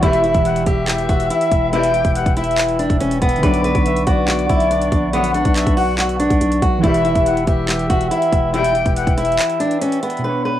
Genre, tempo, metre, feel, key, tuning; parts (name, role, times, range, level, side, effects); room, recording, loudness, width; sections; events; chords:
hip hop, trap; 141 BPM; 4/4; half-time; A4 = 440 Hz
fingerpicked steel-string acoustic guitar; melody; 0.0-10.6 s; B3 to B4; -18 LUFS; equal; cassette tape, tape echo
bright reedy jazz flute; second line; 0.0-9.4 s; D5 to G5; -26 LUFS; left 8 dB; cassette tape, tape echo
warbly lo-fi synth keys; accompaniment; 0.0-10.6 s; B2 to D5; -24 LUFS; right 2 dB; chorus, cassette tape
glass harmonica; sustained chords; 0.0-10.6 s; B3 to E6; -27 LUFS; right 1 dB; cassette tape
warm studio string section; stabs; 0.0-8.9 s; F#2 to G3; -29 LUFS; left 7 dB
growling 808-style bass; bass; 0.0-9.4 s; E1 to B1; -22 LUFS; equal
trap drum kit; drums; 0.0-10.2 s; handclaps, hi-hat, kick drum; -20 LUFS; equal; cassette tape
light reverb, small room ambience; home recording on cassette; -14 LUFS; side -12 dB against mid
0.0-10.2 A section
break 9.4-10.2
0.0 Em; 3.4 Bmadd9; 6.8 Em